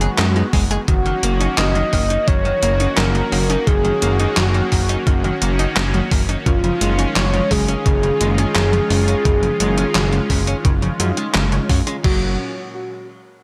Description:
synthwave; 86 BPM; 4/4; straight; A4 = 440 Hz
soft octave-layered synth lead; melody; 0.0-12.4 s; E#4 to D#5; -24 LUFS; equal; chorus, tape echo
warm analog pad; sustained chords; 0.0-12.4 s; A#2 to F#4; -27 LUFS; equal; chorus, vintage 12-bit sampler grit, sidechain pumping
analog pluck; arpeggios; 0.0-12.4 s; D#3 to E#4; -30 LUFS; equal
clean electric guitar; riff; 0.0-12.4 s; C#3 to G#4; -30 LUFS; equal; subtle chorus, digital delay
fat analog bass; bass; 0.0-12.4 s; F#1 to F#2; -22 LUFS; equal; sidechain pumping
clean 12-bit digital drum machine; drums; 0.0-12.2 s; crash cymbal, handclaps, hi-hat, snare drum; -25 LUFS; equal; overdrive, gated reverb
electronic kick drum; drums; 0.5-12.2 s; -20 LUFS; equal; overdrive
light reverb, digital ambience; -17 LUFS; mono
0.0-12.0 A section; 12.0-13.4 B section
0.0 G#m7/F#; 0.9 D#m7/F#; 6.5 C#add9/F#; 12.0 F#

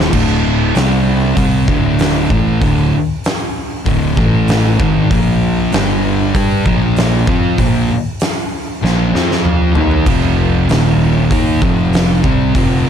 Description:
stoner and doom metal; 97 BPM; 4/4; straight; D phrygian; A4 = 441 Hz
thick fuzz guitar; riff; 0.0-12.9 s; D2 to G4; -17 LUFS; left 10 dB; distortion
thick fuzz guitar; riff; 0.0-12.9 s; D2 to G4; -16 LUFS; right 8 dB; distortion
fuzz fingered electric bass; bass; 0.0-12.8 s; D1 to G2; -19 LUFS; equal; overdrive
oversized low-tuned drum kit; drums; 0.0-12.7 s; crash cymbal, hi-hat, kick drum, snare drum, toms; -16 LUFS; left 1 dB
little or no reverb; dark, warm production; -11 LUFS; side -8 dB against mid
0.1-12.9 A section
drum fill 8.8-10.1
0.1 D5; 0.8 C5; 1.4 D5; 4.2 A5; 4.8 G#5; 5.1 Bb5; 5.7 G5; 6.3 Bb5; 9.1 F5; 9.8 Eb5; 10.1 F5; 10.7 Eb5; 11.3 F5

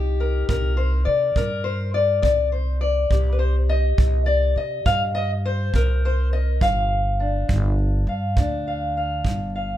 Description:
acoustic country blues, solo or duo; 68 BPM (dotted quarters); 12/8; straight; A4 = 440 Hz
fingerpicked steel-string acoustic guitar; melody; 0.0-9.8 s; G2 to F5; -23 LUFS; left 3 dB; plate reverb
upright bass; bass; 0.0-9.8 s; G1 to C3; -22 LUFS; equal
kick drum; drums; 0.5-9.4 s; -25 LUFS; right 2 dB
light reverb; -19 LUFS; side -12 dB against mid
0.0-9.8 A section
0.0 Cm7; 6.6 G7(no3)

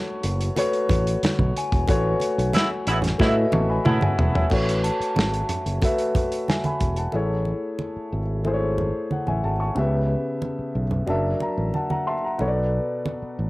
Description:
lush 1970s-style soul; 91 BPM; 4/4; straight; A major; A4 = 443 Hz
dark grand piano; accompaniment; 0.0-13.5 s; B2 to C#6; -25 LUFS; left 1 dB
fingered electric bass; bass; 0.2-13.5 s; E1 to A2; -24 LUFS; equal
warm soul drum kit; drums; 0.2-7.1 s; crash cymbal, hi-hat, kick drum, snare drum, toms; -24 LUFS; equal; cassette tape
congas; percussion; 0.6-13.2 s; -29 LUFS; right 2 dB
glockenspiel with soft plastic mallets; texture; 1.6-6.1 s; G#5 to A5; -35 LUFS; left 1 dB
warm horn section; stabs; 2.5-4.5 s; C#3 to E4; -26 LUFS; right 1 dB
small room ambience; home recording on cassette; -20 LUFS; side -20 dB against mid
0.0-4.5 A section; 4.5-7.1 B section; 7.1-13.5 C section
band accent 1.9-4.5; drum fill 3.2-4.5; grand piano fill 11.1-12.4
0.0 A69; 7.1 Amaj7; 9.8 C#m7b5; 11.1 F#7alt; 12.4 Bm7

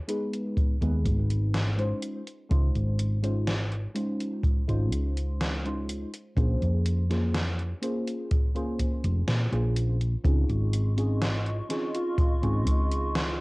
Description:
vaporwave; 62 BPM; 4/4; straight; Db major; A4 = 440 Hz
mellow FM electric piano; accompaniment; 0.1-13.3 s; Ab3 to C5; -32 LUFS; equal; phaser, analog chorus, cassette tape, tape echo
gated 80s digital drum machine; drums; 0.1-13.3 s; hi-hat, snare drum; -32 LUFS; equal; gated reverb, gated reverb snare
kick drum; drums; 0.6-12.9 s; -26 LUFS; equal
hollow-body short-scale fingered electric bass; bass; 0.8-13.4 s; F1 to Bb2; -26 LUFS; equal; tube saturation
warbly tape-like pad; sustained chords; 10.7-13.4 s; F4 to Db6; -35 LUFS; equal; chorus, built-in reverb, cassette tape
warm velvety synth lead; melody; 11.9-12.5 s; F4; -34 LUFS; equal; chorus, cassette tape, tape echo
light reverb; home recording on cassette; -25 LUFS; side -24 dB against mid
0.0-10.2 A section; 10.2-13.4 B section
0.0 Abm; 2.0 Dbmaj9; 6.4 Bbm7; 10.2 Dbmaj9

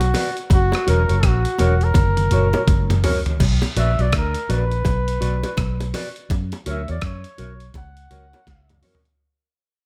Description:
roots reggae; 83 BPM; 4/4; swing 62% on 16ths; B harmonic minor; A4 = 440 Hz
warm flugelhorn; melody; 0.0-8.8 s; F#4 to F#5; -27 LUFS; equal; tape echo
vintage muted fingered electric bass; bass; 0.0-8.8 s; E1 to F#2; -22 LUFS; equal
dusty soul sampler-style drum kit; drums; 0.0-9.2 s; crash cymbal, hi-hat, kick drum, rim click, snare drum, toms; -24 LUFS; equal
bongos; percussion; 0.0-9.0 s; -31 LUFS; equal
mellow electric guitar; accompaniment; 0.1-9.0 s; F#4 to D5; -28 LUFS; equal; lush chorus, tape echo
light reverb; -20 LUFS; mono
0.0-3.4 A section; 3.4-9.2 B section
drum fill 2.0-3.4, 8.5-9.2; fade-out 3.4-9.2
0.0 Bm; 0.5 F#; 3.4 Bm; 6.3 F#

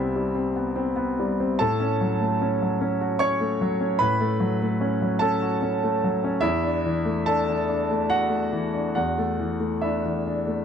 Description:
neoclassical minimalist piano; 73 BPM; 3/4; uneven beats, rubato; A major; A4 = 440 Hz
warm grand piano; solo; 0.0-10.6 s; C2 to C#6; -22 LUFS; equal
light reverb; dark, warm production; -22 LUFS; side -7 dB against mid
0.0-10.6 A section
0.0 Cmaj7; 1.6 A6; 6.4 E7sus4

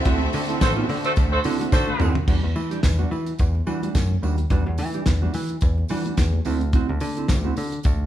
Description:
disco; 108 BPM; 4/4; swing 56% on 16ths; E minor; A4 = 437 Hz
rich studio violin section; second line; 0.0-2.0 s; C4 to E5; -31 LUFS; right 1 dB
mellow electric guitar; accompaniment; 0.0-8.0 s; G3 to A4; -29 LUFS; right 6 dB
bright studio string section; sustained chords; 0.0-2.2 s; D3 to F#4; -32 LUFS; right 2 dB
picked electric bass; bass; 0.1-8.1 s; A1 to E3; -23 LUFS; equal
damped 70s drum kit; drums; 0.1-8.0 s; crash cymbal, hi-hat, kick drum, snare drum, toms; -22 LUFS; equal
congas; percussion; 0.1-8.0 s; -36 LUFS; left 6 dB
tambourine; percussion; 0.3-8.0 s; -44 LUFS; right 6 dB
clear horn section; stabs; 0.6-2.1 s; F#4 to C5; -25 LUFS; equal
little or no reverb; small room ambience; -20 LUFS; side -12 dB against mid
0.0-2.3 A section; 2.3-8.1 B section
drum fill 1.7-2.3
0.0 D9; 2.3 Em9; 6.5 D9

